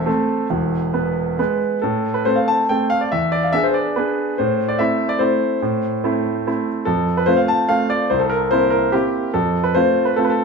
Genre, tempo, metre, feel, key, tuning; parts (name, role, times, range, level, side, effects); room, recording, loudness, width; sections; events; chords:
classical, piano waltz; 134-154 BPM; 3/4; rubato; A minor; A4 = 441 Hz
clear grand piano; solo; 0.0-10.4 s; E1 to A5; -16 LUFS; equal
wet stone room reverb, RT60 1.2 s; minimal, uncompressed stereo recording; -16 LUFS; side -4 dB against mid
0.0-1.8 A section; 1.8-10.4 B section
0.0 Am/E; 0.5 E; 1.8 Am; 3.1 E7; 4.4 Am; 6.9 F; 8.1 C7; 9.3 F